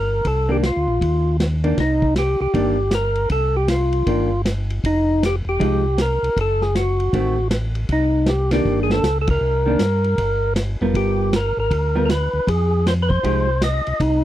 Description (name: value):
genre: soul jazz organ trio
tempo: 157 BPM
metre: 4/4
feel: swing 64% on 8ths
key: C dorian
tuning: A4 = 440 Hz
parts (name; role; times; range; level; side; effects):
- percussive tonewheel organ; melody; 0.0-14.2 s; Eb4 to Eb5; -20 LUFS; equal; slow rotary speaker, overdrive
- mellow tonewheel organ; bass; 0.0-14.2 s; E1 to G2; -21 LUFS; equal; slow rotary speaker
- vintage drum kit; drums; 0.2-14.1 s; hi-hat, kick drum, ride cymbal, snare drum; -26 LUFS; equal; none
- vintage hollow-body jazz guitar; accompaniment; 0.5-13.5 s; Eb3 to Bb4; -21 LUFS; right 1 dB; none
room: little or no reverb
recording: dry, close 1970s-style studio recording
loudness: -17 LUFS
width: side -13 dB against mid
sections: 0.0-14.2 A section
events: band accent 9.2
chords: 0.0 Cm9; 4.8 Fm9; 6.4 F#dim7; 7.9 Cm9; 10.9 G7#9; 12.5 Fm9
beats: | 0.24 0.63 1.01 1.39 | 1.77 2.16 2.54 2.92 | 3.30 3.69 4.07 4.45 | 4.83 5.21 5.60 5.98 | 6.36 6.74 7.13 7.51 | 7.89 8.27 8.65 9.04 | 9.42 9.80 10.18 10.56 | 10.94 11.32 11.71 12.09 | 12.47 12.85 13.23 13.61 | 13.99